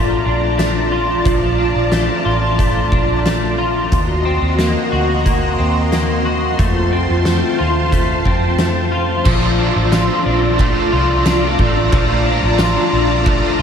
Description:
dream pop; 90 BPM; 4/4; straight; Bb major; A4 = 439 Hz
string machine, violas; sustained chords; 0.0-13.6 s; F4 to C6; -19 LUFS; equal; phaser, ensemble chorus
electric guitar at the edge of break-up; arpeggios; 0.0-13.6 s; F3 to Gb4; -19 LUFS; left 2 dB; analog chorus, ping-pong delay
vintage muted fingered electric bass; bass; 0.0-13.6 s; A1 to F2; -19 LUFS; equal
oversized low-tuned drum kit; drums; 0.6-13.4 s; crash cymbal, hi-hat, kick drum, ride cymbal, snare drum, tambourine; -20 LUFS; equal
biting overdriven guitar; accompaniment; 9.2-13.6 s; F3 to F4; -22 LUFS; right 5 dB; tremolo, ensemble chorus
wet cathedral reverb, RT60 6.1 s; dreamy mix soaked in reverb; -13 LUFS; side -7 dB against mid
0.0-9.3 A section; 9.3-13.6 B section
0.0 Bbmaj7; 3.9 Ebm6; 6.6 F; 9.3 Bbmaj7
0.59 | 1.26 1.92 2.59 3.26 | 3.92 4.59 5.26 5.92 | 6.59 7.26 7.92 8.59 | 9.26 9.92 10.59 11.26 | 11.92 12.59 13.26

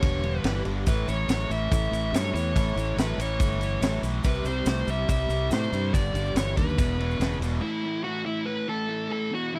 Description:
classic rock; 142 BPM; 4/4; straight; A mixolydian; A4 = 436 Hz
dark smooth lead guitar; melody; 0.0-9.6 s; E4 to E5; -33 LUFS; equal; overdrive, slapback echo
fingerpicked twelve-string acoustic guitar; accompaniment; 0.0-7.6 s; E2 to A4; -40 LUFS; equal
biting overdriven guitar; riff; 0.0-7.6 s; E2 to A3; -40 LUFS; equal; spring reverb
raw garage guitar; riff; 0.0-9.6 s; E2 to A3; -35 LUFS; equal; overdrive
modern bright fingered electric bass; bass; 0.0-7.6 s; E1 to A2; -31 LUFS; equal; tube saturation
vintage drum kit; drums; 0.0-7.5 s; kick drum, ride cymbal, snare drum; -31 LUFS; equal
tube shaker; percussion; 0.9-7.5 s; -49 LUFS; equal
little or no reverb; dry, close 1970s-style studio recording; -26 LUFS; mono
0.0-7.6 A section; 7.6-9.6 B section
0.0 G; 0.9 A; 4.2 C; 5.9 G; 6.8 E7; 7.6 A5
0.02 0.44 | 0.87 1.29 1.71 2.13 | 2.56 2.98 3.40 3.82 | 4.25 4.67 5.09 5.51 | 5.94 6.36 6.78 7.20 | 7.62 8.04 8.47 8.89 | 9.31

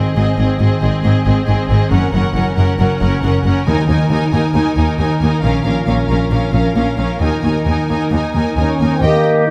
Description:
cinematic; 136 BPM; 4/4; straight; A4 = 440 Hz
warm symphonic violin section; melody; 0.0-9.2 s; Eb5 to Ab5; -28 LUFS; equal
rich symphonic violin section; second line; 0.0-9.2 s; Ab4 to Eb5; -27 LUFS; equal
rich symphonic viola section; accompaniment; 0.0-9.2 s; C4 to G4; -23 LUFS; equal
concert harp; arpeggios; 0.0-9.5 s; Gb2 to Bb4; -23 LUFS; equal
rich symphonic cello section; bass; 0.0-9.1 s; Eb2 to Bb2; -20 LUFS; equal
rich symphonic double bass section; bass; 0.0-9.1 s; Gb1 to Eb2; -21 LUFS; equal
timpani; percussion; 3.7-4.3 s; Eb3; -23 LUFS; equal
mellow French horn section; sustained chords; 8.6-9.5 s; Bb3 to Eb4; -18 LUFS; equal
mellow silver concert flute; second line; 9.0-9.5 s; Eb5; -23 LUFS; equal
warm oboe; second line; 9.0-9.5 s; G4; -25 LUFS; equal
moderate scoring stage reverb, RT60 1.8 s; -15 LUFS; mono
0.0-9.0 A section
build-up 0.0-9.0
0.0 Ab; 1.9 Gb; 3.7 Ebsus4; 5.4 Bbm; 7.2 Ebsus4
| 0.16 0.60 1.04 1.48 | 1.91 2.35 2.79 3.23 | 3.67 4.11 4.55 4.99 | 5.43 5.87 6.32 6.76 | 7.21 7.67 8.12 8.58 | 9.03 9.48

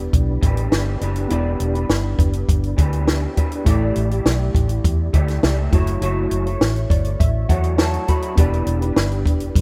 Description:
indie pop, bedroom pop; 102 BPM; 4/4; straight; E dorian; A4 = 438 Hz
electric guitar through a small old amp; accompaniment; 0.0-9.6 s; E3 to D5; -29 LUFS; equal; ensemble chorus, warbly pitch drift
warbly lo-fi synth keys; accompaniment; 0.0-9.6 s; A3 to B5; -30 LUFS; equal; chorus, cassette tape
vintage muted fingered electric bass; bass; 0.0-9.6 s; E1 to E2; -23 LUFS; equal
compact cocktail drum kit; drums; 0.1-9.6 s; hi-hat, kick drum, snare drum; -21 LUFS; equal
small room ambience; rough home demo mix; -19 LUFS; mono
0.0-9.6 A section
synth keys fill 6.6-8.4
0.0 Em7; 3.7 A7sus4; 5.7 F#m7; 8.4 Em7
0.14 0.72 | 1.31 1.90 2.49 3.08 | 3.67 4.25 4.84 5.43 | 6.02 6.61 7.20 7.79 | 8.37 8.96 9.55

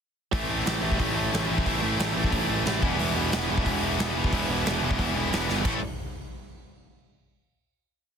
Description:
punk rock; 180 BPM; 4/4; straight; A minor; A4 = 440 Hz
tight distorted guitar; riff; 0.3-5.8 s; A2 to A4; -29 LUFS; left 16 dB; distortion
tight distorted guitar; riff; 0.3-5.8 s; E2 to A3; -29 LUFS; right 13 dB; distortion
fuzz picked electric bass; bass; 0.3-5.8 s; E1 to A1; -30 LUFS; equal; overdrive
big rock drum kit; drums; 0.3-5.7 s; crash cymbal, hi-hat, kick drum, snare drum; -29 LUFS; equal; soft clipping on snare
little or no reverb; dense, heavily limited modern master; -23 LUFS; side -7 dB against mid
0.3-5.6 verse; 5.6-7.0 final chord
drum fill 5.5
0.3 Am; 2.8 Em; 5.6 A5
| 0.33 0.66 0.99 1.32 | 1.66 1.99 2.32 2.65 | 2.99 3.32 3.65 3.98 | 4.32 4.65 4.98 5.32 | 5.65

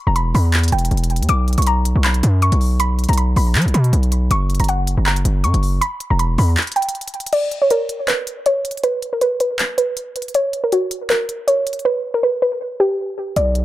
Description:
hip hop, trap; 159 BPM; 4/4; half-time; B harmonic minor; A4 = 440 Hz
soft round pluck; melody; 0.0-13.6 s; F#4 to D6; -19 LUFS; equal; chorus, low-pass filter, analog delay
distorted 808-style bass; bass; 0.1-6.6, 13.4-13.6 s; E1 to F#3; -15 LUFS; equal; distortion
trap drum kit; drums; 0.2-13.6 s; crash cymbal, handclaps, hi-hat; -24 LUFS; equal
light reverb; echo-heavy mix; -16 LUFS; side -15 dB against mid
0.0-7.3 A section; 7.3-13.6 B section
break 6.6-7.3, 7.3-13.4; drums muted 11.9-13.4
0.0 Em; 1.3 Bsus2; 4.3 F#; 5.8 Em; 7.3 N.C.
0.16 0.54 0.91 | 1.29 1.67 2.04 2.42 | 2.80 3.18 3.55 3.93 | 4.31 4.69 5.06 5.44 | 5.82 6.20 6.57 6.95 | 7.33 7.71 8.08 8.46 | 8.84 9.21 9.59 9.97 | 10.35 10.72 11.10 11.48 | 11.86 12.23 12.61 12.99 | 13.37

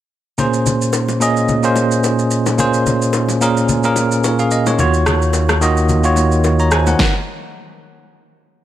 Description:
amapiano; 109 BPM; 4/4; swing 55% on 16ths; Bb minor; A4 = 440 Hz
bell-like tine electric piano; accompaniment; 0.4-7.1 s; Bb2 to Bb5; -15 LUFS; right 1 dB; medium stereo tremolo
deep house drum kit; drums; 0.4-7.1 s; kick drum, rim click, shaker, snare drum; -21 LUFS; equal
congas and bongos; percussion; 0.4-7.0 s; -23 LUFS; left 5 dB
warm sub bass; bass; 4.8-7.0 s; Eb2; -16 LUFS; equal
light reverb, digital ambience; -13 LUFS; side -12 dB against mid
0.4-8.6 A section
stop 7.0-8.6
0.4 Bbm7; 4.8 Ebm7
| 0.39 0.94 1.49 2.04 | 2.59 3.14 3.69 4.24 | 4.79 5.34 5.89 6.44 | 6.99

